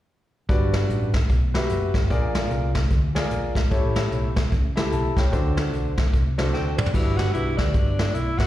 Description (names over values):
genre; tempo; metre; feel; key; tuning
uptempo gospel; 149 BPM; 4/4; swing 61% on 8ths; G major; A4 = 440 Hz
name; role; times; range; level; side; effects
clear concert grand piano; accompaniment; 0.5-7.9 s; G2 to A5; -27 LUFS; left 2 dB; slapback echo
hollow-body short-scale fingered electric bass; bass; 0.5-8.5 s; F#1 to D2; -24 LUFS; equal; none
vintage brush drum kit; drums; 0.5-8.5 s; crash cymbal, hi-hat, kick drum, snare drum, toms; -24 LUFS; equal; none
breathy tenor saxophone; melody; 6.5-8.5 s; C4 to F#4; -28 LUFS; left 1 dB; slapback echo
room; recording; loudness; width
light reverb; live gig heard through the venue's PA, recital hall reverb; -20 LUFS; side -14 dB against mid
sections
0.5-6.9 A section; 6.9-8.5 B section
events
drum fill 6.5-6.9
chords
0.5 Gmaj7; 2.1 Bb7; 3.7 A7; 5.3 D7; 6.9 Gmaj7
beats
| 0.49 0.89 1.30 1.70 | 2.10 2.51 2.91 3.31 | 3.72 4.12 4.52 4.93 | 5.33 5.73 6.14 6.54 | 6.94 7.34 7.75 8.15